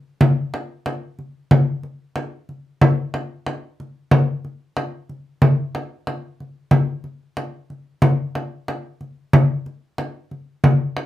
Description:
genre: mongolian traditional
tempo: free time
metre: none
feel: none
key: none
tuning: none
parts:
  - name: frame drum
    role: percussion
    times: 0.2-11.1 s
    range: none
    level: -16 LUFS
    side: equal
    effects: none
room: wet studio ambience, RT60 0.4 s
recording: band playing live in one room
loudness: -18 LUFS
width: side -14 dB against mid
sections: 0.0-11.1 A section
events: none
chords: none

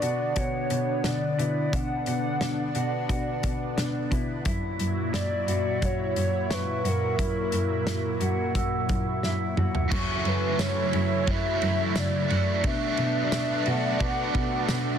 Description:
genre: dream pop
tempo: 88 BPM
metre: 4/4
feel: straight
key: B minor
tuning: A4 = 441 Hz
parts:
  - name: warbly nostalgic lead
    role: melody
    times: 0.0-15.0 s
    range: A#4 to F#5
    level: -31 LUFS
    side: equal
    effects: chorus, tremolo, digital delay
  - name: lush unison pad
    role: sustained chords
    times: 0.0-15.0 s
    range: A#2 to E4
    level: -31 LUFS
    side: equal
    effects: chorus, phaser
  - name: mellow electric guitar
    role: arpeggios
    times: 0.0-15.0 s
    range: C#3 to F#4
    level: -34 LUFS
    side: left 2 dB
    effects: lush chorus, digital delay
  - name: rich cello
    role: bass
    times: 0.0-15.0 s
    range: F#2 to B2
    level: -30 LUFS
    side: equal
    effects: none
  - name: loose indie drum kit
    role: drums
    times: 0.0-14.8 s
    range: crash cymbal, hi-hat, kick drum, ride cymbal, snare drum, tambourine, toms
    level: -31 LUFS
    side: equal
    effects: soft clipping on snare
  - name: vibraphone with medium mallets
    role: texture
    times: 0.0-15.0 s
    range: F#5 to E6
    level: -39 LUFS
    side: right 2 dB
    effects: digital delay
  - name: crunchy overdriven guitar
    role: accompaniment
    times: 9.9-15.0 s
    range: F#2 to F#4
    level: -31 LUFS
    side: right 5 dB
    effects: tremolo, ensemble chorus
room: light reverb, studio reverb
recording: dense, heavily limited modern master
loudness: -24 LUFS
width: side -8 dB against mid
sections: 0.0-9.9 A section; 9.9-15.0 B section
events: drum fill 9.2-9.9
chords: 0.0 Bmadd9; 4.5 F#7; 9.9 F#m7; 12.6 Bm7

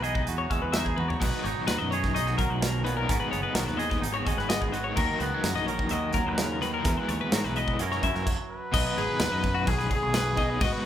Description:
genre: math rock and midwest emo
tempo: 128 BPM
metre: 4/4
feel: straight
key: B major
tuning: A4 = 440 Hz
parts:
  - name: twangy electric guitar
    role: accompaniment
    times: 0.0-10.1 s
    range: G#2 to B4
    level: -33 LUFS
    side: right 6 dB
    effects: none
  - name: twelve-string electric guitar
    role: arpeggios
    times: 0.0-10.8 s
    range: F#4 to E5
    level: -31 LUFS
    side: left 6 dB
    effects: spring reverb
  - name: growling fingered electric bass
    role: bass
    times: 0.0-10.7 s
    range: F#1 to G#2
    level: -32 LUFS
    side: equal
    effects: overdrive
  - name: modern studio drum kit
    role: drums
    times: 0.0-10.7 s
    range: crash cymbal, hi-hat, kick drum, snare drum, splash cymbal, toms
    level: -30 LUFS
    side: equal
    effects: none
  - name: overdriven electric guitar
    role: riff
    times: 1.2-10.9 s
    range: F#2 to E4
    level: -33 LUFS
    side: left 1 dB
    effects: tremolo
  - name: breathy trumpet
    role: melody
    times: 8.5-10.9 s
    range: F#4 to B4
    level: -30 LUFS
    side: equal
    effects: none
room: moderate recital hall reverb, RT60 1.3 s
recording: recorded in a church or concert hall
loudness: -24 LUFS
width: side -10 dB against mid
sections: 0.0-8.7 A section; 8.7-10.9 B section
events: drum fill 1.0; stop 8.3-8.7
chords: 0.0 Emaj9; 1.2 B6; 3.1 G#m7; 5.0 D#m7; 6.8 Emaj9; 7.8 F#7; 8.7 B6

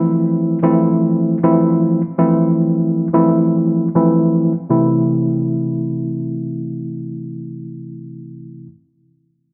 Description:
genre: hip hop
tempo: 96 BPM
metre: 4/4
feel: swing 59% on 16ths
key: A minor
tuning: A4 = 440 Hz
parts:
  - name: mellow tine electric piano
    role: accompaniment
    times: 0.0-8.7 s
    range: C3 to E4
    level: -17 LUFS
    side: equal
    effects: high-pass filter, low-pass filter
room: moderate echo chamber reverb, RT60 1.9 s, digital ambience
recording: none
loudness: -16 LUFS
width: mono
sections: 0.0-4.7 A section; 4.7-7.2 B section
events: filter sweep on tine electric piano 0.0-4.7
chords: 0.0 Fmaj7; 4.7 Am

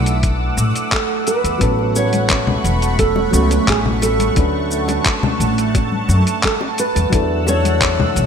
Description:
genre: sunset chillout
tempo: 87 BPM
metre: 4/4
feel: straight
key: unclear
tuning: A4 = 440 Hz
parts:
  - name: nylon-string guitar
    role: melody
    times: 0.0-8.3 s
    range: F#4 to C#5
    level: -21 LUFS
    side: right 2 dB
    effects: ping-pong delay
  - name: soft electric-piano-like synth keys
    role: accompaniment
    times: 0.0-8.3 s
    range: F#3 to B4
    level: -24 LUFS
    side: moving between left 5 dB and right 5 dB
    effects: chorus, auto-pan, ping-pong delay
  - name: lush unison pad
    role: sustained chords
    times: 0.0-8.3 s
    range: A3 to E6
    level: -22 LUFS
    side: right 2 dB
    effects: chorus, phaser
  - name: upright bass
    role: bass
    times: 0.0-8.3 s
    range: E1 to A2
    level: -19 LUFS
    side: left 1 dB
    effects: tube saturation
  - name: dusty soul sampler-style drum kit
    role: drums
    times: 0.1-8.3 s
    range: cabasa, congas, handclaps, hi-hat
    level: -21 LUFS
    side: left 2 dB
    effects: small room ambience, gated reverb
  - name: electronic kick drum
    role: drums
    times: 0.2-8.0 s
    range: none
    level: -19 LUFS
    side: left 1 dB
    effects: small room ambience
  - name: bongos and congas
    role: percussion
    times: 1.8-8.3 s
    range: none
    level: -27 LUFS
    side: left 5 dB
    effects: none
room: moderate lush hall reverb, RT60 2.8 s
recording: bright 1980s-style digital production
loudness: -14 LUFS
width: side -7 dB against mid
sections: 0.0-8.3 A section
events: none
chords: 0.0 E9sus4; 1.6 A69; 4.4 Dmaj7; 6.8 E9sus4

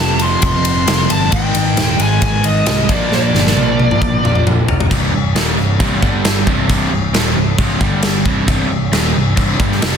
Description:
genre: hard rock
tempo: 134 BPM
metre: 4/4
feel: straight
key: unclear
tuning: A4 = 442 Hz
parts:
  - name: bluesy overdriven lead guitar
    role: melody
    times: 0.0-4.4 s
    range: D5 to C6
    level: -19 LUFS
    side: left 2 dB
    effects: distortion, digital delay
  - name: cranked stack guitar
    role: riff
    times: 0.0-10.0 s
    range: C2 to Bb3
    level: -20 LUFS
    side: right 1 dB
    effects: overdrive
  - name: crunchy overdriven guitar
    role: riff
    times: 0.0-10.0 s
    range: C2 to Bb3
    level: -21 LUFS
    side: right 1 dB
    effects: none
  - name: picked electric bass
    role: bass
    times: 0.0-10.0 s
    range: C1 to C2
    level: -19 LUFS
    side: equal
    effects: none
  - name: big rock drum kit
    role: drums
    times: 0.2-9.9 s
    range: crash cymbal, kick drum, ride cymbal, snare drum, toms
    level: -16 LUFS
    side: equal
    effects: soft clipping on kick, soft clipping on snare
room: small room ambience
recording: dense, heavily limited modern master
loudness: -12 LUFS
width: side -7 dB against mid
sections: 0.0-4.9 A section; 4.9-10.0 B section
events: drum fill 3.1-4.9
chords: 0.0 F; 1.3 Ab5; 2.9 Bb; 4.9 C5; 6.0 G5; 6.5 C5; 7.8 G5; 8.3 C5

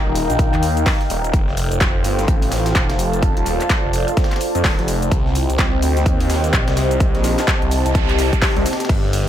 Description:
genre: bass house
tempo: 127 BPM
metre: 4/4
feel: swing 61% on 16ths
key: unclear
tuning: A4 = 441 Hz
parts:
  - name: dark analog pad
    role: sustained chords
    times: 0.0-9.3 s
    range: G3 to Bb5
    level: -25 LUFS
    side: equal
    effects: chorus, sidechain pumping
  - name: warbly tape-like pad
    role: texture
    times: 0.0-9.3 s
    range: C4 to A5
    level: -25 LUFS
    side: left 1 dB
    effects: chorus, built-in reverb, phaser, sidechain pumping
  - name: phased detuned saw bass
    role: bass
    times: 0.1-9.3 s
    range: Eb1 to F2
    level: -20 LUFS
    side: equal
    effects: phaser, overdrive, sidechain pumping
  - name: big-room dance drum kit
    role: drums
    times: 0.2-9.2 s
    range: crash cymbal, handclaps, hi-hat, ride cymbal, shaker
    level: -24 LUFS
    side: left 1 dB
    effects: overdrive, studio reverb
  - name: breakbeat sampler-style drum kit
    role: drums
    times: 0.2-9.3 s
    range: hi-hat, snare drum, tambourine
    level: -30 LUFS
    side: equal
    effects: sidechain pumping on perc, high-pass filter on perc, studio reverb, high-pass filter on snare, sidechain pumping on hats, high-pass filter on hats, high-pass filter on room
  - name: electronic kick drum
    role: drums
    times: 0.4-9.0 s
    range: none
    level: -18 LUFS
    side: equal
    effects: overdrive, studio reverb
  - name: noise sweep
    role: sound effects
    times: 7.6-8.9 s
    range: none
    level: -28 LUFS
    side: right 7 dB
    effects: none
room: little or no reverb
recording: none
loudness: -15 LUFS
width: side -11 dB against mid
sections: 0.0-9.3 A section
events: noise sweep 7.6-8.9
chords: 0.0 Eb; 1.3 F; 5.1 Cm

